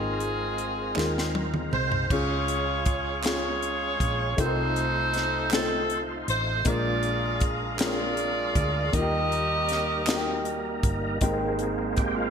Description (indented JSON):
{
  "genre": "slow gospel",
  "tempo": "53 BPM (dotted quarters)",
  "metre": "6/8",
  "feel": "straight",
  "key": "Ab major",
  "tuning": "A4 = 440 Hz",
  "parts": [
    { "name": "bright saxophone section", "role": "melody", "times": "0.0-10.4 s", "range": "C4 to Eb5", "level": "-28 LUFS", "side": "right 1 dB", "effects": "none" },
    { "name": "warm upright piano", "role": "accompaniment", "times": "0.0-12.3 s", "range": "Ab2 to C5", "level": "-31 LUFS", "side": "left 2 dB", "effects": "none" },
    { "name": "percussive tonewheel organ", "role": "sustained chords", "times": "0.0-12.3 s", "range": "G3 to Db5", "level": "-33 LUFS", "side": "right 3 dB", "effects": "fast rotary speaker, overdrive, chorus vibrato" },
    { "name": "hollow-body short-scale fingered electric bass", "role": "bass", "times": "0.0-12.3 s", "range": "G1 to Eb2", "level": "-32 LUFS", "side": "equal", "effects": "none" },
    { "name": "tight funk drum kit", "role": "drums", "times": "0.2-12.2 s", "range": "crash cymbal, hi-hat, kick drum, snare drum, toms", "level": "-29 LUFS", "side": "equal", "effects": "gated reverb" },
    { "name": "group handclap", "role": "percussion", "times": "1.0-10.4 s", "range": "none", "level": "-36 LUFS", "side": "right 8 dB", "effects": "none" }
  ],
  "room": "moderate lush hall reverb, RT60 1.7 s, small room ambience",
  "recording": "bright 1980s-style digital production",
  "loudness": "-24 LUFS",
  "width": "side -7 dB against mid",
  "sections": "0.0-2.1 A section; 2.1-11.2 B section; 11.2-12.3 C section",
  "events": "drum fill 1.0-2.1; tonewheel organ solo 11.2-12.3",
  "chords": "0.0 Ab69; 2.1 Db; 4.4 F7/C; 6.7 Bb7; 8.9 Eb; 11.2 Abmaj9"
}